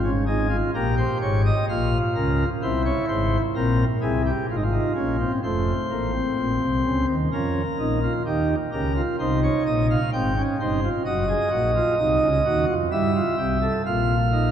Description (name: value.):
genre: classical, baroque-style 3-part fugue for pipe organ.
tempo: 64 BPM.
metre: 3/4.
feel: straight.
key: F minor.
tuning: A4 = 438 Hz.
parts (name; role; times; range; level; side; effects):
pipe organ, sparkling flutes; solo; 0.0-14.5 s; F1 to G5; -20 LUFS; equal; none.
room: wet cathedral reverb, RT60 4.8 s.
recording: dark, warm production.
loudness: -20 LUFS.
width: side -9 dB against mid.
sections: 0.0-5.4 A section; 5.4-14.5 B section.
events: none.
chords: 0.0 Fm/Ab; 1.7 Bbm; 2.6 C; 4.5 Fm/Ab; 5.4 F7; 7.3 Bbm/F; 8.3 Eb7; 10.1 Ab; 11.1 Cm7b5/Gb; 12.9 Cadd11; 13.8 Fsus4/Bb.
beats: 0.74 1.68 | 2.61 3.55 4.48 | 5.43 6.37 7.32 | 8.26 9.19 10.13 | 11.06 11.98 12.91 | 13.85.